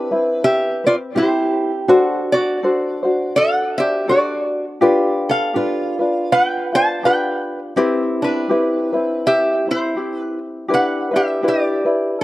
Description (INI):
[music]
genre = Hawaiian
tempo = 82 BPM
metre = 4/4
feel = swing 58% on 8ths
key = C major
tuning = A4 = 440 Hz
[part]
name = lap resonator guitar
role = melody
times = 0.0-12.2 s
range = D4 to A5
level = -18 LUFS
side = equal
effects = slapback echo
[part]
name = fingerpicked steel-string acoustic guitar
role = second line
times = 0.0-10.4 s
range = E4 to B4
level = -25 LUFS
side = right 3 dB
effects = slapback echo
[part]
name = tenor ukulele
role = accompaniment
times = 0.0-12.2 s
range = C4 to C5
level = -19 LUFS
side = left 2 dB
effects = none
[sound]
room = little or no reverb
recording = recorded outdoors, with no room sound, lossy compression artefacts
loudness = -16 LUFS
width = side -16 dB against mid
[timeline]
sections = 0.0-10.7 A section; 10.7-12.2 B section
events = none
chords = 0.0 Cmaj7; 1.9 D7; 4.8 G7; 7.8 Cmaj7; 10.7 Em7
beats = 0.41 1.15 | 1.88 2.62 3.35 4.09 | 4.82 5.56 6.29 7.03 | 7.76 8.49 9.23 9.96 | 10.70 11.43 12.17